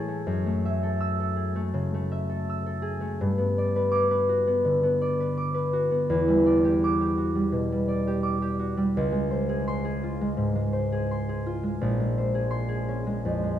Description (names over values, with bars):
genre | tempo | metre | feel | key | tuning
classical, solo harp piece | 83 BPM | 4/4 | rubato | unclear | A4 = 440 Hz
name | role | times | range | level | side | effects
concert harp | solo | 0.0-13.6 s | A#1 to E6 | -23 LUFS | equal | none
room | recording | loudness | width
moderate recital hall reverb, RT60 1.7 s | close, detailed microphones | -23 LUFS | side -11 dB against mid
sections
0.0-13.6 A section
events
none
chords
0.3 F#m9; 3.2 Gmaj7; 6.1 Em9; 9.0 C#maj7; 11.8 A#m9